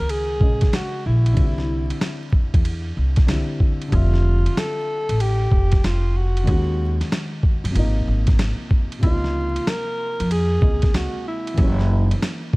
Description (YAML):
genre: hip hop, jazz-hop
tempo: 94 BPM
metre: 4/4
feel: swing 66% on 16ths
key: unclear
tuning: A4 = 440 Hz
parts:
  - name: breathy alto saxophone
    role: melody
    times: 0.0-12.2 s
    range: E4 to A#4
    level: -27 LUFS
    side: equal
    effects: analog delay
  - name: dark upright piano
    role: accompaniment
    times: 0.0-12.6 s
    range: B#2 to E5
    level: -29 LUFS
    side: equal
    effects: none
  - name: upright bass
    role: bass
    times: 0.0-12.1 s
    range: F1 to F#2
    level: -20 LUFS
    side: equal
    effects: none
  - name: boom bap sampler-style drum kit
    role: drums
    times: 0.1-12.6 s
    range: hi-hat, kick drum, ride cymbal, snare drum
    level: -20 LUFS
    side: equal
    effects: none
room: little or no reverb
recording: dark, warm production, vinyl crackle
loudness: -18 LUFS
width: side -24 dB against mid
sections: 0.0-12.6 A section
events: none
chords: 0.0 G#9sus4; 1.4 Cadd9; 3.9 Fmaj9; 6.5 D#m7; 7.8 G#69; 9.0 C#maj9; 11.6 F#7b9